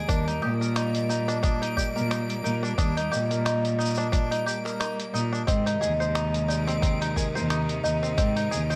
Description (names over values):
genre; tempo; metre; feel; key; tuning
folktronica; 89 BPM; 4/4; swing 56% on 16ths; Eb major; A4 = 440 Hz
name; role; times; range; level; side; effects
music box; second line; 0.0-8.8 s; Bb4 to Eb6; -34 LUFS; equal; digital delay
rich string quartet; sustained chords; 0.0-8.8 s; C3 to Eb4; -36 LUFS; equal; none
bluegrass banjo; arpeggios; 0.0-8.8 s; C4 to C5; -34 LUFS; equal; vintage 12-bit sampler grit, low-pass filter, tape echo
backwards swelling texture; texture; 0.0-8.8 s; D7; -44 LUFS; equal; built-in reverb
rich cello; bass; 0.1-8.8 s; Eb2 to Bb2; -30 LUFS; equal; none
electronic kick drum; drums; 0.1-8.3 s; none; -28 LUFS; equal; overdrive
lo-fi sampler-style drum kit; drums; 0.1-8.8 s; finger snaps, hi-hat, shaker; -36 LUFS; equal; overdrive
room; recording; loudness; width
moderate echo chamber reverb, RT60 2.2 s; none; -26 LUFS; mono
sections
0.0-8.8 A section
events
none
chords
0.1 Ebmaj7; 5.5 Ab